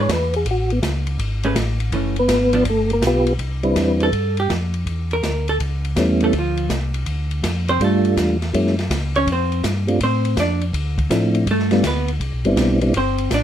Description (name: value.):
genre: soul jazz organ trio.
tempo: 164 BPM.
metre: 4/4.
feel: swing 66% on 8ths.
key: C major from 3.4 s.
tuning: A4 = 440 Hz.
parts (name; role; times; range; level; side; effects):
percussive tonewheel organ; melody; 0.0-12.9 s; F3 to C#5; -18 LUFS; equal; slow rotary speaker, chorus vibrato.
hollow-body jazz guitar; accompaniment; 0.0-13.4 s; E3 to D5; -21 LUFS; right 2 dB; none.
mellow tonewheel organ; bass; 0.0-13.4 s; F#1 to A2; -21 LUFS; equal; slow rotary speaker.
open jazz drum kit; drums; 0.1-13.4 s; hi-hat, kick drum, ride cymbal, snare drum; -26 LUFS; equal; none.
room: little or no reverb.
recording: close, detailed microphones.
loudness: -17 LUFS.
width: side -10 dB against mid.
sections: 0.0-3.4 A section; 3.4-13.4 A section.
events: tonewheel organ solo 0.0-3.4; hollow-body jazz guitar solo 3.4-13.4.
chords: 0.5 Amaj7; 1.9 F#m7; 2.7 G7; 3.4 Cmaj7; 4.9 Bb(#11); 5.6 A7; 6.3 Dm7; 7.8 Gsus2; 8.5 F#9; 9.3 F69; 10.7 Dm7; 11.5 Gadd9; 12.2 Cmaj7.